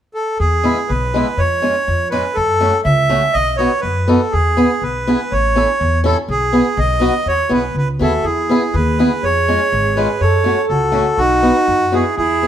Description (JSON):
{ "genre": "alpine folk, alpine dance band", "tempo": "122 BPM", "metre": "2/4", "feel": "straight", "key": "E major", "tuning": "A4 = 440 Hz", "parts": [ { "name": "accordion", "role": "melody", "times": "0.1-12.5 s", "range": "F#4 to E5", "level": "-16 LUFS", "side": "right 1 dB", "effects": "none" }, { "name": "upright bass", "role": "bass", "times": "0.4-12.5 s", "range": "G#1 to F#2", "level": "-19 LUFS", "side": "left 1 dB", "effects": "none" }, { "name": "picked swing-style acoustic guitar", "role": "accompaniment", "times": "0.6-12.5 s", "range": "G#3 to A4", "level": "-18 LUFS", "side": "equal", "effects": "none" }, { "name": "mellow alto saxophone", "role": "second line", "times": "8.0-12.5 s", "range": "D#4 to A4", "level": "-22 LUFS", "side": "right 4 dB", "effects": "none" } ], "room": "moderate stone room reverb, RT60 1.2 s", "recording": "band playing live in one room", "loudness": "-13 LUFS", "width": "side -10 dB against mid", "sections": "0.4-8.2 A section; 8.2-12.5 A section", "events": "none", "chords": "0.4 E; 1.4 C#/E#; 2.4 F#m; 3.3 B; 4.3 E; 5.3 A; 6.3 E/B; 6.8 B; 7.3 E; 9.2 C#/E#; 10.2 F#m; 11.2 B", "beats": "| 0.41 0.90 | 1.40 1.88 | 2.37 2.86 | 3.34 3.83 | 4.33 4.83 | 5.32 5.81 | 6.29 6.77 | 7.26 7.75 | 8.25 8.74 | 9.23 9.72 | 10.20 10.69 | 11.18 11.68 | 12.17" }